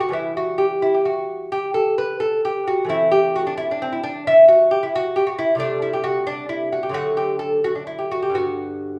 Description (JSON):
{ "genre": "classical, baroque-style dance for lute", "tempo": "87 BPM (dotted quarters)", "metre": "12/8", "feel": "uneven beats, rubato", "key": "unclear", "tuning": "A4 = 440 Hz", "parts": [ { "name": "lute", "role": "solo", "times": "0.0-9.0 s", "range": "G2 to B4", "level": "-20 LUFS", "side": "equal", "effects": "none" } ], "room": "wet large studio reverb, RT60 0.9 s", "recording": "band playing live in one room, small room ambience", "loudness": "-20 LUFS", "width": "mono", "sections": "0.0-9.0 A section", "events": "none", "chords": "0.1 Em; 2.9 Am/E; 7.0 D; 8.4 G" }